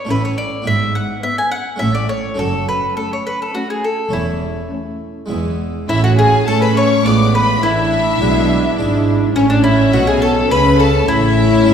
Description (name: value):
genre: classical, baroque-style concerto movement with solo episodes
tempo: 104 BPM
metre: 3/4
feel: straight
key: A major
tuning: A4 = 441 Hz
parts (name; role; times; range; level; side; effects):
- mandolin; melody; 0.0-11.7 s; C#4 to G#5; -19 LUFS; left 1 dB; none
- harpsichord; accompaniment; 0.0-11.7 s; E2 to F#4; -24 LUFS; right 1 dB; none
- rich chamber violin section; melody; 0.1-11.7 s; C#5 to D6; -22 LUFS; left 3 dB; none
- warm studio violin section; second line; 0.1-11.7 s; B3 to D5; -20 LUFS; left 4 dB; none
- warm symphonic viola section; accompaniment; 0.1-11.7 s; A3 to D4; -21 LUFS; right 1 dB; none
- dark chamber double bass section; bass; 0.1-11.7 s; E1 to A2; -19 LUFS; right 3 dB; none
- rich studio cello section; bass; 0.1-11.7 s; E2 to A3; -20 LUFS; right 1 dB; none
room: wet scoring stage reverb, RT60 1.6 s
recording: heard from further back in the room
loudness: -13 LUFS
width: side -8 dB against mid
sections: 0.0-5.9 A section; 5.9-11.7 B section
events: none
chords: 0.1 A; 0.7 E/G#; 1.8 A; 2.4 F#m; 4.1 A/E; 5.3 E; 5.9 A; 7.0 G#dim7/A; 7.6 E7/A; 9.4 A; 10.5 A/C#; 11.1 A